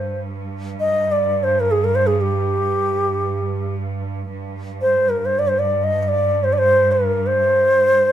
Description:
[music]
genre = Arabic maqam ensemble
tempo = free time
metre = none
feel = none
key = G maqam kurd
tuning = A4 = 440 Hz
[part]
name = bansuri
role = melody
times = 0.0-8.1 s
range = G4 to Eb5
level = -16 LUFS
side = equal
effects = none
[part]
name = rich studio cello section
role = drone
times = 0.0-8.1 s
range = G2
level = -24 LUFS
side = right 2 dB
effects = none
[sound]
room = moderate studio reverb, RT60 0.6 s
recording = minimal, uncompressed stereo recording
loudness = -16 LUFS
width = side -11 dB against mid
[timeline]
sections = 0.0-4.3 A section; 4.3-8.1 A section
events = none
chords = none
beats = free time

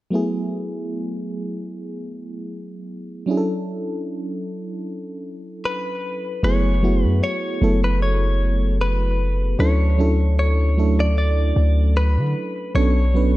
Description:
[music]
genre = R&B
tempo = 76 BPM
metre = 4/4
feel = swing 54% on 16ths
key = F# minor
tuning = A4 = 440 Hz
[part]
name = FM electric piano with tremolo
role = accompaniment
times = 0.1-13.4 s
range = F#3 to B4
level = -24 LUFS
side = right 2 dB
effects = none
[part]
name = direct-recorded clean electric guitar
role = melody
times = 5.7-13.4 s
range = B4 to D5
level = -26 LUFS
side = left 1 dB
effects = tape echo
[part]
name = long sustained 808-style bass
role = bass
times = 6.4-13.4 s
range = F#1 to D3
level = -18 LUFS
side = equal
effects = none
[sound]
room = digital ambience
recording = dark, warm production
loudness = -18 LUFS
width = side -17 dB against mid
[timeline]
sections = 0.1-6.4 A section; 6.4-13.4 B section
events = none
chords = 0.1 F#m11; 3.3 Dmaj9; 6.4 F#m11; 9.6 Dmaj9; 12.7 Bm9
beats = | 0.12 0.91 1.70 2.48 | 3.27 4.06 4.85 5.64 | 6.43 7.22 8.01 8.80 | 9.59 10.38 11.17 11.96 | 12.75

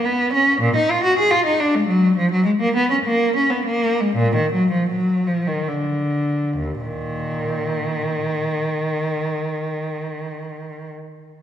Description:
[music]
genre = classical, baroque-style suite movement for unaccompanied cello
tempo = 63-110 BPM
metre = 3/4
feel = rubato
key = Eb minor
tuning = A4 = 440 Hz
[part]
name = rich cello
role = solo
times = 0.0-10.9 s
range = Eb2 to Ab4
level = -18 LUFS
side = equal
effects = none
[sound]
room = moderate concert hall reverb, RT60 2.3 s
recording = minimal, uncompressed stereo recording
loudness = -18 LUFS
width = side -10 dB against mid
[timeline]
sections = 0.0-6.6 A section; 6.6-11.4 B section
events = slowing down 1.5-6.6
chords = none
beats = 0.05 | 0.61 1.18 1.73 | 2.29 2.89 3.50 | 4.17 4.89 5.67 | 6.57 7.43 8.31 | 9.19 10.05

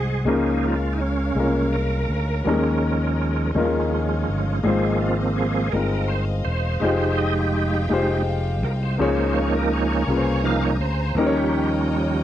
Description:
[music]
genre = slow gospel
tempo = 55 BPM (dotted quarters)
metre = 6/8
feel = straight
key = unclear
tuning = A4 = 440 Hz
[part]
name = warm concert grand piano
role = accompaniment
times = 0.0-12.2 s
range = Ab2 to Db5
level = -24 LUFS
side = left 3 dB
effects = none
[part]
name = bright tonewheel organ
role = sustained chords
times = 0.0-12.2 s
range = F3 to F5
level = -25 LUFS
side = right 4 dB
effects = slow rotary speaker, chorus vibrato
[part]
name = warm studio string section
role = sustained chords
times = 0.0-12.2 s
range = Db4 to Bb5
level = -34 LUFS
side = left 2 dB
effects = none
[part]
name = fingered electric bass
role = bass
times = 0.0-12.2 s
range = Fb1 to Eb2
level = -24 LUFS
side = equal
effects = none
[sound]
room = light reverb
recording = dry, close 1970s-style studio recording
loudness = -19 LUFS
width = side -12 dB against mid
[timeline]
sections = 0.0-12.2 A section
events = tonewheel organ solo 0.0-12.2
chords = 0.3 Db6; 2.5 Eb7sus4; 3.6 Eb9sus4; 4.6 Ab6; 6.8 Fm9; 9.0 Db6; 11.2 Eb7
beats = | 0.28 1.37 | 2.46 3.56 | 4.65 5.74 | 6.83 7.91 | 9.00 10.09 | 11.17

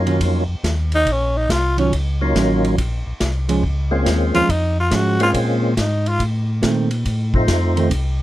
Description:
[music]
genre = soul jazz organ trio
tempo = 140 BPM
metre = 4/4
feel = swing 66% on 8ths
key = Bb minor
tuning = A4 = 440 Hz
[part]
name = percussive tonewheel organ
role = melody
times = 0.0-7.9 s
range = F3 to F4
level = -20 LUFS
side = left 1 dB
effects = slow rotary speaker, overdrive, chorus vibrato
[part]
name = mellow tonewheel organ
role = bass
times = 0.0-8.2 s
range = A1 to Bb2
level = -20 LUFS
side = equal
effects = chorus vibrato, slow rotary speaker
[part]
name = hollow-body jazz guitar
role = accompaniment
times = 0.1-7.9 s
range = Eb3 to F4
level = -20 LUFS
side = right 4 dB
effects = none
[part]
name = vintage drum kit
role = drums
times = 0.1-8.0 s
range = hi-hat, kick drum, ride cymbal, snare drum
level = -25 LUFS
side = equal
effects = none
[part]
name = growling tenor saxophone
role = melody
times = 1.0-6.2 s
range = Db4 to Gb4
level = -19 LUFS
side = equal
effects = none
[sound]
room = little or no reverb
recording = none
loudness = -16 LUFS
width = side -15 dB against mid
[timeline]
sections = 0.0-8.2 A section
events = tenor saxophone solo 0.0-8.2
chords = 0.0 Ebm9; 2.8 Bbm7; 6.2 F7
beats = 0.21 0.64 | 1.07 1.50 1.92 2.35 | 2.78 3.21 3.63 4.06 | 4.49 4.92 5.35 5.78 | 6.20 6.63 7.06 7.49 | 7.92

